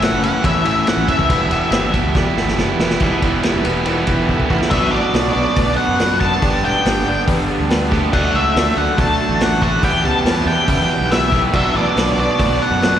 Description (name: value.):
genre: classic rock.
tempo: 140 BPM.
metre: 4/4.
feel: straight.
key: unclear.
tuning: A4 = 440 Hz.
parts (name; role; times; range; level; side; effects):
octave-fuzz lead guitar; melody; 0.0-13.0 s; D5 to A5; -19 LUFS; left 2 dB; distortion, slapback echo, plate reverb.
picked plugged-in steel-string acoustic guitar; accompaniment; 0.0-13.0 s; E2 to G4; -28 LUFS; right 2 dB; none.
tack piano; accompaniment; 0.0-13.0 s; E4 to E5; -29 LUFS; left 1 dB; none.
crunchy overdriven guitar; riff; 0.0-13.0 s; G2 to E4; -24 LUFS; left 11 dB; slapback echo.
overdriven electric guitar; riff; 0.0-13.0 s; E2 to G4; -21 LUFS; right 9 dB; slapback echo.
fuzz fingered electric bass; bass; 0.0-13.0 s; E1 to C#3; -21 LUFS; equal; overdrive.
vintage drum kit; drums; 0.0-12.9 s; crash cymbal, hi-hat, kick drum, ride cymbal, snare drum; -20 LUFS; equal; none.
room: light reverb.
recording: live gig heard through the venue's PA, recital hall reverb.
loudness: -14 LUFS.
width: side -10 dB against mid.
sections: 0.0-3.0 A section; 3.0-4.7 B section; 4.7-13.0 C section.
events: lead electric guitar solo 0.0-3.0; drum fill 2.1-3.0, 4.3-4.7.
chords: 0.0 A; 1.3 Em; 4.7 Bm; 6.4 G; 8.1 D; 9.8 Em; 11.5 Bm.